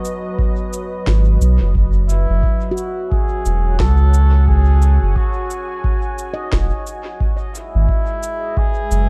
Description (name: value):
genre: ambient dub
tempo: 88 BPM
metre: 4/4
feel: swing 60% on 16ths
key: unclear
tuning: A4 = 440 Hz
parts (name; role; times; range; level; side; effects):
- trumpet with cup mute; melody; 0.0-9.1 s; E4 to A4; -29 LUFS; equal; dub echo
- deep dark ambient pad; sustained chords; 0.0-9.1 s; F#3 to G#5; -30 LUFS; equal; chorus, built-in reverb
- electronic cabasa and snare drum; drums; 0.0-9.1 s; none; -32 LUFS; equal; dub echo
- electronic kick drum; drums; 0.4-8.7 s; none; -22 LUFS; equal; overdrive
- warm sub bass; bass; 1.1-9.1 s; E1 to C#2; -15 LUFS; equal; none
- handpan; arpeggios; 2.7-8.2 s; F#4 to D#5; -32 LUFS; equal; dub echo
room: little or no reverb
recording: dark, warm production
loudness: -17 LUFS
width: mono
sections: 0.0-9.1 A section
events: none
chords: 0.0 G#m7; 1.8 F#sus4; 7.2 G#m7